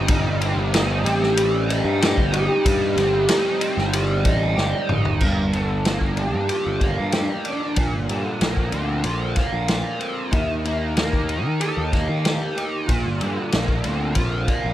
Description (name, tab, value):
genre	psychedelic rock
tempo	94 BPM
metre	4/4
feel	straight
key	G minor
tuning	A4 = 440 Hz
part	raw garage guitar	riff	0.0-14.7 s	G2 to G4	-24 LUFS	right 2 dB	overdrive, flanger
part	fuzz picked electric bass	bass	0.0-14.7 s	G1 to Eb3	-24 LUFS	equal	overdrive
part	sitar	melody	0.1-14.7 s	D4 to Bb4	-26 LUFS	equal	slapback echo
part	vintage drum kit	drums	0.1-14.6 s	crash cymbal, kick drum, ride cymbal, snare drum, toms	-24 LUFS	equal	none
room	little or no reverb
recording	none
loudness	-19 LUFS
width	side -13 dB against mid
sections	0.0-5.2 A section; 5.2-14.7 B section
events	drum fill 4.6-5.2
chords	0.0 Cm/G; 5.2 Gm7; 7.8 Bbadd9; 10.3 Eb; 12.9 Bbadd9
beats	| 0.10 0.74 1.38 2.02 | 2.65 3.29 3.93 4.57 | 5.21 5.85 6.49 7.13 | 7.77 8.41 9.05 9.69 | 10.33 10.97 11.61 12.25 | 12.89 13.52 14.16